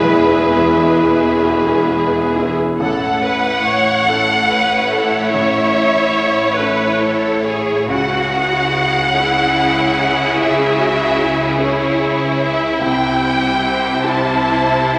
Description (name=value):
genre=cinematic, emotional film score for orchestra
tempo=42-50 BPM (dotted quarters)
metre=6/8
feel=rubato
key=A major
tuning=A4 = 440 Hz
part: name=warm symphonic violin section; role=melody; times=0.0-15.0 s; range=C#5 to A5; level=-20 LUFS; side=equal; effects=none
part: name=mellow clarinet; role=second line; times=0.0-2.4 s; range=G#4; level=-28 LUFS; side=equal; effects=none
part: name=mellow cor anglais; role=second line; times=0.0-2.4 s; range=B4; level=-24 LUFS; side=equal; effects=none
part: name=mellow silver concert flute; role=second line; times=0.0-2.4 s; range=E5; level=-29 LUFS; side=equal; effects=none
part: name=rich symphonic violin section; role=second line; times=0.0-15.0 s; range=E4 to C#5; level=-24 LUFS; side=equal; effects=none
part: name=clear symphonic viola section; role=accompaniment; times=0.0-15.0 s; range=E4 to C#5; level=-22 LUFS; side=equal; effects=none
part: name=warm baby grand piano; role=accompaniment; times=0.0-15.0 s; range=A1 to C5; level=-26 LUFS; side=equal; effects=none
part: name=mellow French horn section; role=sustained chords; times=0.0-2.4 s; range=G#3 to E4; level=-20 LUFS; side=equal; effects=none
part: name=clear symphonic cello section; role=bass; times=0.0-15.0 s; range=E2 to C#3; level=-25 LUFS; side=equal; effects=none
part: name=rich symphonic double bass section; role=bass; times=0.0-15.0 s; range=E1 to C#2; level=-30 LUFS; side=equal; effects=none
room=wet concert hall reverb, RT60 1.9 s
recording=none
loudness=-15 LUFS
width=mono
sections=0.0-2.8 A section; 2.8-15.0 B section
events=none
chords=0.0 E; 2.8 A; 7.9 C#m; 12.8 C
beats=| 0.04 1.44 | 2.80 4.07 | 5.33 6.57 | 7.89 9.14 | 10.37 11.58 | 12.80 14.03